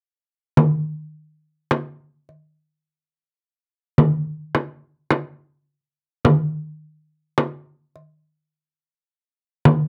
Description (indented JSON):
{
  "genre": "Arabic maqam ensemble",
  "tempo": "106 BPM (eighths)",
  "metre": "10/8",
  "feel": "straight",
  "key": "none",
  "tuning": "none",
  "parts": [
    { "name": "darbuka", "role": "percussion", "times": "0.6-9.9 s", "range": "none", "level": "-23 LUFS", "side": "equal", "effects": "none" },
    { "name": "frame drum", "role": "percussion", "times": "0.6-9.9 s", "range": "none", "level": "-19 LUFS", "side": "equal", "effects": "none" }
  ],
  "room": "moderate small room reverb, RT60 0.5 s",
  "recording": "dry, close 1970s-style studio recording",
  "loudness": "-21 LUFS",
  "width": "mono",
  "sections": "0.6-9.9 A section",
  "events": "none",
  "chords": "none",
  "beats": "| 0.57 1.14 1.71 2.28 2.85 3.42 3.98 4.55 5.12 5.69 | 6.25 6.82 7.39 7.96 8.53 9.10 9.66"
}